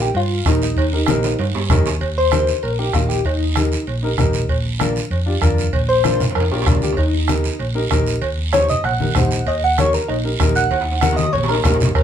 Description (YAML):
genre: latin, cumbia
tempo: 193 BPM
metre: 4/4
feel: straight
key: Eb major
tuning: A4 = 440 Hz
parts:
  - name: soft struck synth lead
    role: melody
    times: 0.0-3.9, 5.9-12.0 s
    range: Eb4 to Gb5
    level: -20 LUFS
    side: left 1 dB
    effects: chorus, tremolo
  - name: warm upright piano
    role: accompaniment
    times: 0.0-11.9 s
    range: D4 to C5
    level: -23 LUFS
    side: equal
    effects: none
  - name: hollow-body short-scale fingered electric bass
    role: bass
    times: 0.0-12.0 s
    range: Bb1 to G2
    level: -21 LUFS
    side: equal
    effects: none
  - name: congas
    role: percussion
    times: 0.1-11.9 s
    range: none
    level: -23 LUFS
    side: left 2 dB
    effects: none
  - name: cowbell and timbales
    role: percussion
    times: 0.1-12.0 s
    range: none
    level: -27 LUFS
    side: right 5 dB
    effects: none
  - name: guiro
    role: percussion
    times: 0.1-12.0 s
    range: none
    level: -29 LUFS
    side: right 6 dB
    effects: none
  - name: bombo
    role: percussion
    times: 0.5-12.0 s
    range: none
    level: -21 LUFS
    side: equal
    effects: none
room: moderate studio reverb, RT60 0.6 s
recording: band playing live in one room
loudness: -15 LUFS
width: side -9 dB against mid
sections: 0.0-2.0 A section; 2.0-12.0 B section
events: drum fill 1.1-2.0, 6.2-7.0, 10.7-12.0; soft synth lead solo 2.0-12.0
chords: 0.0 Eb; 4.5 Bb; 7.0 Eb